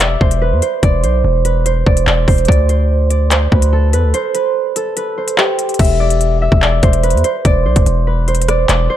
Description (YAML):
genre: hip hop, drill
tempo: 145 BPM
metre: 4/4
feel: half-time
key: E minor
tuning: A4 = 440 Hz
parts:
  - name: concert harp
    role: melody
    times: 0.0-9.0 s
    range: G4 to E5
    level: -16 LUFS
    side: right 2 dB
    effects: none
  - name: hard-hitting 808-style bass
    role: bass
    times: 0.0-8.9 s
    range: E1 to E2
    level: -14 LUFS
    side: equal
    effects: none
  - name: drill drum kit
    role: drums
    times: 0.0-8.8 s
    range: crash cymbal, handclaps, hi-hat, kick drum, rim click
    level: -14 LUFS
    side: equal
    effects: overdrive
room: digital ambience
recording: dark, warm production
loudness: -11 LUFS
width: side -11 dB against mid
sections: 0.0-5.8 A section; 5.8-9.0 B section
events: break 4.1-5.8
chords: 0.0 E5; 2.5 Cmaj7sus2/D; 4.1 N.C.; 5.8 E5